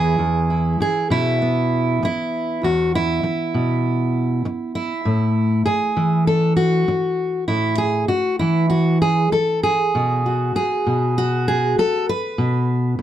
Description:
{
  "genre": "folk, solo fingerstyle acoustic guitar",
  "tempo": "98 BPM",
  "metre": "4/4",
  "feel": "straight",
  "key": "E major",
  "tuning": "A4 = 440 Hz",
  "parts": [
    { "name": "fingerpicked steel-string acoustic guitar", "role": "solo", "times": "0.0-13.0 s", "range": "E2 to B4", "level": "-17 LUFS", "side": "equal", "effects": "none" }
  ],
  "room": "light reverb",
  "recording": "dark, warm production",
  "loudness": "-17 LUFS",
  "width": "side -11 dB against mid",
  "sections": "0.2-13.0 A section",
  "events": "none",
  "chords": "0.0 E5; 5.1 A5; 9.9 B5"
}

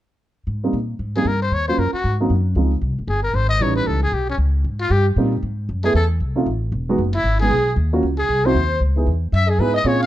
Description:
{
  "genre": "jazz",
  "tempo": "231 BPM",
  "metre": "4/4",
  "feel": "swing 59% on 8ths",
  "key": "unclear",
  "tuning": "A4 = 440 Hz",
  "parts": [
    { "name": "upright bass", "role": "bass", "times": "0.5-10.1 s", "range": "E1 to Bb2", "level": "-20 LUFS", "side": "equal", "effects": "none" },
    { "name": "dark baby grand piano", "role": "accompaniment", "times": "0.6-10.1 s", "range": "E3 to Ab4", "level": "-21 LUFS", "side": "right 2 dB", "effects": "none" },
    { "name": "trumpet with metal mute", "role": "melody", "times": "1.2-10.1 s", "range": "C#4 to F5", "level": "-22 LUFS", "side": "left 2 dB", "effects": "plate reverb" },
    { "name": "growling alto saxophone", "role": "second line", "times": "4.8-10.1 s", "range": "E4 to F5", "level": "-24 LUFS", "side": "right 3 dB", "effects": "none" }
  ],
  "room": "light reverb",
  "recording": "dark, warm production",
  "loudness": "-17 LUFS",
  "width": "side -14 dB against mid",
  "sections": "0.5-4.7 A section; 4.7-10.1 B section",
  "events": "none",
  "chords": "0.5 Abmaj7; 1.5 Ebm7; 2.0 Ab7; 2.6 Dbmaj7; 3.6 A7#11; 4.7 Abmaj9; 5.7 Gbm11; 6.2 F7; 6.7 Emaj9; 7.8 Ebm7; 8.3 Ab7b13/C; 8.8 Dbm7"
}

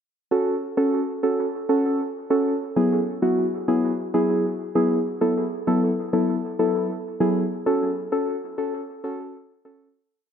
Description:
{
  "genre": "pop",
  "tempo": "98 BPM",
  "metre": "4/4",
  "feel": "straight",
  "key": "F# minor",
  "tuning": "A4 = 440 Hz",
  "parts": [
    { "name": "muted felt-like synth keys", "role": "solo", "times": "0.3-9.9 s", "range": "F#3 to A4", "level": "-21 LUFS", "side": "equal", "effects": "chorus, dub echo" }
  ],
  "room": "wet spring reverb, RT60 2.5 s",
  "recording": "echo-heavy mix",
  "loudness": "-21 LUFS",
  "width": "side -8 dB against mid",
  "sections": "0.3-10.1 chorus",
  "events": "fade-out 7.7-10.1",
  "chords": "0.3 F#m; 2.8 E/F#; 5.2 Asus2/F#; 7.7 F#m"
}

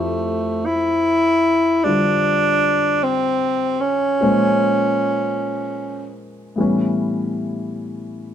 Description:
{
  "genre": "jazz",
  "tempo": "51 BPM",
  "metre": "4/4",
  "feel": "swing 68% on 8ths",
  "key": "F major",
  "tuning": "A4 = 441 Hz",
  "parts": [
    { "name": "breathy tenor saxophone", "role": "melody", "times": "0.0-6.2 s", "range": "A3 to E4", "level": "-17 LUFS", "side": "equal", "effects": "none" },
    { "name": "warm grand piano", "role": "accompaniment", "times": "0.0-8.3 s", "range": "F2 to C5", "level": "-22 LUFS", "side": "left 2 dB", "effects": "none" }
  ],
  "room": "moderate studio reverb, RT60 0.9 s",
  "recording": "band playing live in one room",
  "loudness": "-16 LUFS",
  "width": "side -9 dB against mid",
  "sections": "0.0-8.3 A section",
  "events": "none",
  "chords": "0.0 Fmaj9; 4.2 Bbm7; 6.6 A9"
}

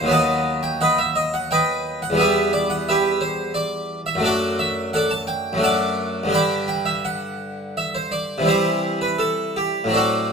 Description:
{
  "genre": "classical, baroque-style suite movement for harpsichord",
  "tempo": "85 BPM",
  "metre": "3/4",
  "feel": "rubato",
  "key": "E minor",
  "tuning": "A4 = 440 Hz",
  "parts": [
    { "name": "harpsichord", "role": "solo", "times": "0.0-10.3 s", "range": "D#2 to B5", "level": "-19 LUFS", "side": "right 1 dB", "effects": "none" }
  ],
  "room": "moderate stone room reverb, RT60 1.2 s",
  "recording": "minimal, uncompressed stereo recording",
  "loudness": "-19 LUFS",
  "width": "side -5 dB against mid",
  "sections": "0.0-10.3 A section",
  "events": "none",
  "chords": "0.1 B/D#; 2.2 Em; 4.3 D/F#; 6.3 G5; 8.5 C"
}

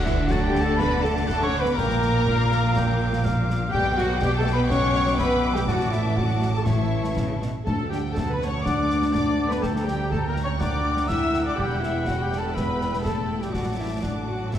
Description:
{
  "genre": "cinematic, heroic adventure film score",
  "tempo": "122 BPM",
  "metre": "4/4",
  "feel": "straight",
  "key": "D major",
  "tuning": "A4 = 440 Hz",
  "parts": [
    { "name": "warm symphonic violin section", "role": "melody", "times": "0.0-14.6 s", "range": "D5 to E6", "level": "-35 LUFS", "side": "left 5 dB", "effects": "none" },
    { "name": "dark symphonic violin section", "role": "second line", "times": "0.0-14.6 s", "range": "F5 to D6", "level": "-35 LUFS", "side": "left 2 dB", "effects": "none" },
    { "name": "mellow hollow concert flute", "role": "second line", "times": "0.0-14.6 s", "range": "D5 to E6", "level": "-31 LUFS", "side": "left 3 dB", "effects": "none" },
    { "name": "warm oboe", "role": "second line", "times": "0.0-14.6 s", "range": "C#5 to A5", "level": "-33 LUFS", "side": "right 1 dB", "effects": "none" },
    { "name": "rich symphonic viola section", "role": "accompaniment", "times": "0.0-14.6 s", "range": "D4 to E5", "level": "-29 LUFS", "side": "right 1 dB", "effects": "none" },
    { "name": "rich symphonic cello section", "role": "bass", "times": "0.0-14.6 s", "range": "D2 to D3", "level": "-30 LUFS", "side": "right 2 dB", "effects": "none" },
    { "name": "warm symphonic double bass section", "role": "bass", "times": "0.0-14.6 s", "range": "E1 to D2", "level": "-28 LUFS", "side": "right 2 dB", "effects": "none" },
    { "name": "timpani", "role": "percussion", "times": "0.0-0.5, 5.7-8.4, 14.5-14.6 s", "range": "A2 to D3", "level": "-31 LUFS", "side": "left 1 dB", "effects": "none" },
    { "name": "dark French horn section", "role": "sustained chords", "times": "0.1-14.6 s", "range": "D3 to E4", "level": "-29 LUFS", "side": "left 3 dB", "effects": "none" },
    { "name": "concert snare drum, concert bass drum and clash cymbals", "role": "drums", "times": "0.1-14.6 s", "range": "none", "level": "-30 LUFS", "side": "equal", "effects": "none" }
  ],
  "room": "moderate scoring stage reverb, RT60 1.7 s",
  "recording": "dark, warm production",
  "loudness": "-21 LUFS",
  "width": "side -10 dB against mid",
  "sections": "0.0-14.6 A section",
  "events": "none",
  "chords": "0.0 D; 1.8 Bb; 3.7 G/B; 5.7 D5/A; 6.7 A; 7.7 D; 9.6 Gm/D; 11.6 Em; 13.5 D/A"
}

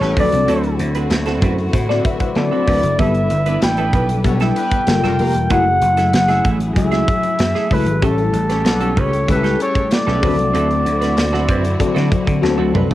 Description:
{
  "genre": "polished 1980s jazz-funk pop",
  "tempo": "95 BPM",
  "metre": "4/4",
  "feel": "straight",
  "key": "unclear",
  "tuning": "A4 = 438 Hz",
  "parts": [
    { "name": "breathy flugelhorn", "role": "melody", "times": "0.0-12.4 s", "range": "A4 to G5", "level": "-20 LUFS", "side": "equal", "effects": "plate reverb" },
    { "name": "clear horn section", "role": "second line", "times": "0.0-10.3 s", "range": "Bb3 to F#5", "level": "-30 LUFS", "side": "left 5 dB", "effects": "plate reverb" },
    { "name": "FM electric piano with soft pad layer", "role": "accompaniment", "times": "0.0-12.9 s", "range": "E#3 to F#5", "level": "-21 LUFS", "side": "left 6 dB", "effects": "ensemble chorus" },
    { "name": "warm studio string section", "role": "sustained chords", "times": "0.0-12.9 s", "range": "C#3 to B4", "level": "-27 LUFS", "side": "equal", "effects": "none" },
    { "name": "twelve-string electric guitar", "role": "riff", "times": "0.0-12.9 s", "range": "A3 to B4", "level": "-24 LUFS", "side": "right 6 dB", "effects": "lush chorus" },
    { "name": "vintage slap bass", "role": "bass", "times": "0.0-12.9 s", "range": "E1 to D3", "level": "-19 LUFS", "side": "right 1 dB", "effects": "none" },
    { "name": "modern studio drum kit", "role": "drums", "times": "0.0-12.9 s", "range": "hi-hat, kick drum, snare drum, toms", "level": "-20 LUFS", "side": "right 1 dB", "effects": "cassette tape" },
    { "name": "group handclap", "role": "percussion", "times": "1.1-12.6 s", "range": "none", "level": "-37 LUFS", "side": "left 7 dB", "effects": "none" }
  ],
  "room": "wet booth ambience, RT60 0.2 s",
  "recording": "home recording on cassette",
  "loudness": "-14 LUFS",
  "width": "side -14 dB against mid",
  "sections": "0.0-12.9 A section",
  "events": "drum fill 12.4-12.9",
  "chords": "0.2 D7; 3.0 G69; 4.9 Gm9; 5.5 F#m9; 8.0 A7; 10.2 D7"
}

